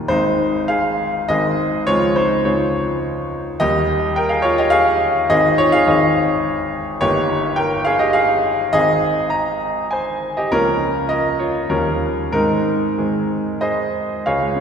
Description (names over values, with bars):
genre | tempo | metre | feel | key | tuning
classical, romantic character piece for solo piano | 93-107 BPM | 3/4 | rubato | Ab major | A4 = 440 Hz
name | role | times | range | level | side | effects
clear grand piano | solo | 0.0-14.6 s | Eb1 to Bb5 | -16 LUFS | equal | none
room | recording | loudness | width
wet church reverb, RT60 2.6 s | heard from further back in the room | -16 LUFS | side -7 dB against mid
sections
0.1-14.3 A section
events
none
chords
0.1 Ab; 1.9 Dbmaj7; 3.6 Eb; 5.3 Ab; 7.0 Eb7/G; 8.7 Ab; 10.5 Bbm/Db; 11.7 Eb9; 12.3 Ab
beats
| 0.10 0.69 1.28 | 1.86 2.45 3.03 | 3.60 4.17 4.73 | 5.31 5.89 6.45 | 7.02 7.58 8.16 | 8.74 9.32 9.92 | 10.52 11.11 11.71 | 12.34 12.99 13.63 | 14.26